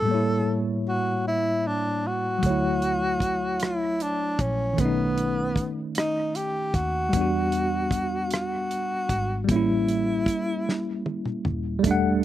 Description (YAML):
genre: slow six-eight R&B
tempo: 51 BPM (dotted quarters)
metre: 6/8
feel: straight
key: unclear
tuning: A4 = 440 Hz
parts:
  - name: breathy tenor saxophone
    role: melody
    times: 0.0-11.0 s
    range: B3 to A4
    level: -26 LUFS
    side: equal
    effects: none
  - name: tine electric piano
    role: accompaniment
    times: 0.0-12.2 s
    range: A2 to F#5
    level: -26 LUFS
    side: equal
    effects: medium stereo tremolo
  - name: vintage muted fingered electric bass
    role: bass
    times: 2.4-12.2 s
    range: D#1 to E2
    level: -30 LUFS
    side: equal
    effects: none
  - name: damped 70s drum kit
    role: drums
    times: 2.4-12.0 s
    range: hi-hat, kick drum, rim click, snare drum, toms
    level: -27 LUFS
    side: equal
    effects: none
  - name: glass harmonica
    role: sustained chords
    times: 11.8-12.2 s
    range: G3 to F#5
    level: -32 LUFS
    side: right 1 dB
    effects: none
room: little or no reverb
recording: recorded outdoors, with no room sound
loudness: -23 LUFS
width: side -13 dB against mid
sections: 0.0-11.8 A section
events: drum fill 10.7-11.8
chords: 0.1 A7b9; 2.4 Dmaj9; 4.8 B7; 7.1 Em9; 9.5 A7b9